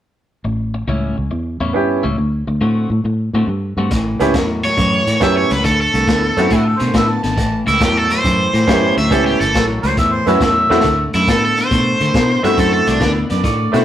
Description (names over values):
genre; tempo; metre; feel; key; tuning
electric blues shuffle; 138 BPM; 4/4; swing 68% on 8ths; unclear; A4 = 441 Hz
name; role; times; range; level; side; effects
electric guitar at the edge of break-up; riff; 0.4-13.8 s; A2 to F#4; -21 LUFS; left 2 dB; spring reverb
fingered electric bass; bass; 0.4-13.8 s; G1 to D3; -19 LUFS; equal; none
bright grand piano; accompaniment; 1.7-13.8 s; A3 to G4; -16 LUFS; right 1 dB; none
crunchy breakbeat drum kit; drums; 3.9-13.8 s; hi-hat, kick drum, snare drum; -20 LUFS; equal; none
cranked stack guitar; melody; 4.6-13.1 s; D4 to E5; -17 LUFS; right 1 dB; overdrive, spring reverb
clear harmonica; second line; 6.5-13.8 s; E4 to A5; -18 LUFS; equal; overdrive
room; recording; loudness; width
moderate small room reverb, RT60 0.5 s; rough rehearsal-room recording; -13 LUFS; side -11 dB against mid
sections
0.4-3.9 A section; 3.9-13.8 B section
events
drum fill 10.6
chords
0.4 A7; 2.2 D7; 3.9 A7; 5.6 D7; 7.4 A7; 10.8 D7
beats
| 0.44 0.88 1.31 1.74 | 2.18 2.61 3.05 3.48 | 3.91 4.35 4.78 5.21 | 5.64 6.08 6.51 6.94 | 7.38 7.81 8.24 8.67 | 9.11 9.54 9.97 10.41 | 10.84 11.27 11.71 12.14 | 12.57 13.01 13.44